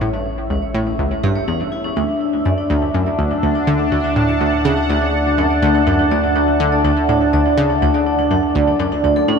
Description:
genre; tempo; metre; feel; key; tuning
ambient, sequencer-driven space music; 123 BPM; 4/4; straight; D major; A4 = 440 Hz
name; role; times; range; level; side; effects
sweeping resonant pad; sustained chords; 0.0-9.4 s; D4 to A5; -19 LUFS; right 1 dB; chorus
vibraphone with hard mallets; arpeggios; 0.0-9.3 s; C#4 to D5; -21 LUFS; moving between left 4 dB and right 3 dB; auto-pan, analog delay
analog pluck; riff; 0.0-9.4 s; C#2 to D3; -19 LUFS; equal; chorus, analog delay
round analog bass; bass; 0.0-9.4 s; A1 to D2; -25 LUFS; equal; tube saturation
room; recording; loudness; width
wet cathedral reverb, RT60 6.0 s; in a vast, echoing space; -14 LUFS; side -6 dB against mid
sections
0.0-9.4 A section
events
fade-in on vibraphone 0.0-9.4; fade-in on analog synth pad 0.0-9.4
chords
0.0 A; 2.0 Dadd9

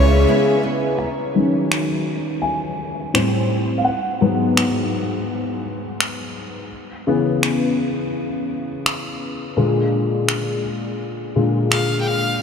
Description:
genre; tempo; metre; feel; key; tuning
contemporary R&B; 84 BPM; 4/4; swing 54% on 16ths; C# dorian; A4 = 441 Hz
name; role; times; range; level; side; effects
clear fiddle; melody; 0.0-0.6, 11.7-12.4 s; C#5 to G5; -27 LUFS; equal; diffuse ambient delay
warm grand piano; accompaniment; 0.0-12.4 s; G#2 to A#5; -19 LUFS; left 2 dB; analog chorus, low-pass filter
clear studio string section; sustained chords; 0.0-1.0 s; C#4 to E5; -30 LUFS; equal; sidechain pumping
picked steel-string acoustic guitar; arpeggios; 0.0-1.1 s; C#3 to E4; -26 LUFS; right 4 dB; analog chorus, diffuse ambient delay
electronic finger snaps; drums; 1.7-11.9 s; none; -24 LUFS; equal; overdrive
room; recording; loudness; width
wet cathedral reverb, RT60 6.7 s; dreamy mix soaked in reverb; -18 LUFS; side -7 dB against mid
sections
1.0-12.4 A section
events
break 0.3-1.0; grand piano solo 1.0-12.4; filter sweep on grand piano 1.0-12.4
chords
0.0 C#m7; 1.0 D#m7; 3.1 Am7; 3.8 G#m7; 6.7 C#m7; 9.6 A#7

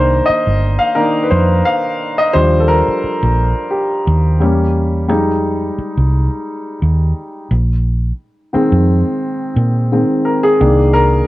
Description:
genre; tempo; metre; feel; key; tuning
lush 1970s-style soul; 87 BPM; 4/4; swing 54% on 16ths; C minor; A4 = 441 Hz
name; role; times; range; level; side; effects
warm grand piano; accompaniment; 0.0-11.3 s; Eb3 to F5; -14 LUFS; left 1 dB; none
hollow-body short-scale fingered electric bass; bass; 0.0-11.2 s; G1 to Bb2; -14 LUFS; equal; none
room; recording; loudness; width
small room reverb; dry, close 1970s-style studio recording; -12 LUFS; side -17 dB against mid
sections
0.0-11.3 A section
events
grand piano solo 0.0-11.3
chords
0.0 Cm7; 2.3 Ebmaj9; 4.4 Edim7; 5.1 Fm7; 7.5 Bb7sus4; 10.6 Cm7

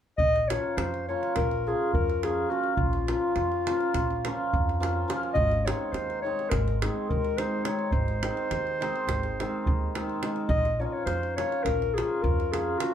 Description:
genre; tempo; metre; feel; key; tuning
balkan folk, Balkan wedding band; 210 BPM (eighths); 9/8; straight; Bb minor; A4 = 440 Hz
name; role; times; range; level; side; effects
dark clarinet; melody; 0.2-12.9 s; F4 to Eb5; -29 LUFS; left 3 dB; none
upright bass; bass; 0.2-12.7 s; Ab1 to F2; -32 LUFS; equal; none
davul; percussion; 0.2-12.9 s; none; -31 LUFS; right 1 dB; none
hammered dulcimer; accompaniment; 0.5-12.9 s; Eb3 to F4; -30 LUFS; right 2 dB; none
room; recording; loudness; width
wet small room reverb, RT60 0.5 s; heard from further back in the room; -25 LUFS; side -9 dB against mid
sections
0.2-12.9 A section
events
none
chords
0.2 Bbm; 5.3 Ab; 10.5 Bbm

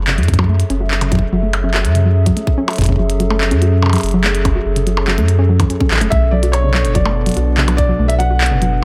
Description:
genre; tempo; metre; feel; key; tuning
IDM; 144 BPM; 4/4; straight; F# minor; A4 = 438 Hz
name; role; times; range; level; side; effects
warbly tape-like pad; sustained chords; 0.0-8.8 s; B2 to E5; -24 LUFS; equal; chorus, built-in reverb, sidechain pumping
warm sub bass; bass; 0.0-8.8 s; E1 to F#2; -17 LUFS; equal; tube saturation
warbly dusty pluck; arpeggios; 0.1-8.7 s; F#2 to F#4; -23 LUFS; equal; chorus, analog delay
glitchy drum kit; drums; 0.1-8.7 s; handclaps, hi-hat, percussion blips; -23 LUFS; equal; small room reverb, tape echo
electronic kick drum; drums; 0.3-7.9 s; none; -19 LUFS; equal; small room reverb
felt-muted upright piano; melody; 6.1-8.8 s; C#5 to F#5; -22 LUFS; equal; analog delay
room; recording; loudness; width
light reverb; echo-heavy mix; -15 LUFS; mono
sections
0.0-8.8 A section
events
none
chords
0.0 F#m7; 6.1 Bm7

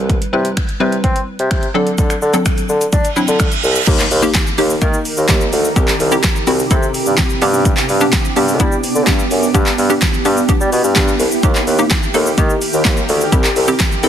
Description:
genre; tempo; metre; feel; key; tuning
dance-pop; 127 BPM; 4/4; straight; G major; A4 = 440 Hz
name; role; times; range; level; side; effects
hollow square pluck; accompaniment; 0.0-14.1 s; F#3 to B4; -19 LUFS; left 1 dB; chorus, sidechain pumping
mellow bassoon; bass; 0.0-14.1 s; C2 to D4; -17 LUFS; equal; sidechain pumping
pop drum kit; drums; 0.1-14.1 s; crash cymbal, finger snaps, handclaps, hi-hat, kick drum, shaker, snare drum; -16 LUFS; equal; overdrive
reverse cymbal and impact; sound effects; 3.1-5.8 s; none; -20 LUFS; right 4 dB; none
shimmering ambient pad; sustained chords; 4.7-14.1 s; C3 to Bb4; -20 LUFS; right 2 dB; chorus, built-in reverb, sidechain pumping
room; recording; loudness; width
light reverb; dense, heavily limited modern master; -12 LUFS; side -9 dB against mid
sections
0.0-3.9 A section; 3.9-14.1 B section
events
reverse cymbal 3.1-3.9; impact 3.9-5.8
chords
0.0 Cmaj7; 1.7 D7; 3.9 Eb; 5.8 C; 7.4 G; 11.4 Eb; 13.3 C

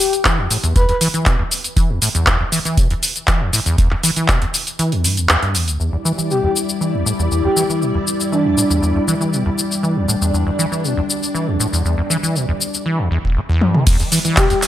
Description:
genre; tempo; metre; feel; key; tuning
acid house; 119 BPM; 4/4; straight; E minor; A4 = 438 Hz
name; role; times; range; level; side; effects
breathy flute-like synth lead; melody; 0.0-1.0, 6.3-9.0, 14.4-14.6 s; D4 to B4; -20 LUFS; left 1 dB; chorus, vintage 12-bit sampler grit, analog delay
electro analog drum machine; drums; 0.0-14.7 s; crash cymbal, handclaps, hi-hat, ride cymbal, shaker, toms; -18 LUFS; left 1 dB; none
acid bass, saw; riff; 0.3-14.5 s; E1 to E3; -19 LUFS; equal; overdrive, analog chorus, tape echo
electronic kick drum; drums; 0.3-4.4, 13.9-14.5 s; none; -16 LUFS; equal; none
string machine, full ensemble; sustained chords; 5.8-14.7 s; G3 to D5; -22 LUFS; left 1 dB; phaser, ensemble chorus, sidechain pumping
room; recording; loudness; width
light reverb; none; -15 LUFS; side -12 dB against mid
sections
0.0-5.8 A section; 5.8-13.9 B section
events
kick drops out 4.8-5.8; filter sweep on acid bass 5.8-13.9; drum fill 13.6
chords
0.0 N.C.; 5.8 Em7

